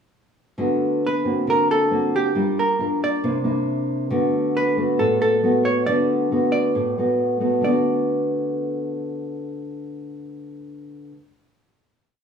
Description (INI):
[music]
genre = bossa nova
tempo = 136 BPM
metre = 4/4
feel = straight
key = D major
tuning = A4 = 439 Hz
[part]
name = nylon-string guitar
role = accompaniment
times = 0.6-11.2 s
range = A2 to Bb4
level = -21 LUFS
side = equal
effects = none
[part]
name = hollow-body jazz guitar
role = melody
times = 1.1-10.9 s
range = G4 to D5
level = -22 LUFS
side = right 2 dB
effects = none
[sound]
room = wet studio reverb, RT60 0.7 s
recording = heard from further back in the room, studio reverb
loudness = -19 LUFS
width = side -7 dB against mid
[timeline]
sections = 0.6-7.6 A section; 7.6-11.1 final chord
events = none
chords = 0.6 D6; 1.5 D7b13; 2.3 Gm7; 3.2 C9; 4.1 D6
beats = | 0.59 1.03 1.47 1.91 | 2.35 2.79 3.23 3.67 | 4.11 4.54 4.98 5.42 | 5.86 6.30 6.74 7.18 | 7.62 8.06 8.50 8.94 | 9.38 9.82 10.26 10.70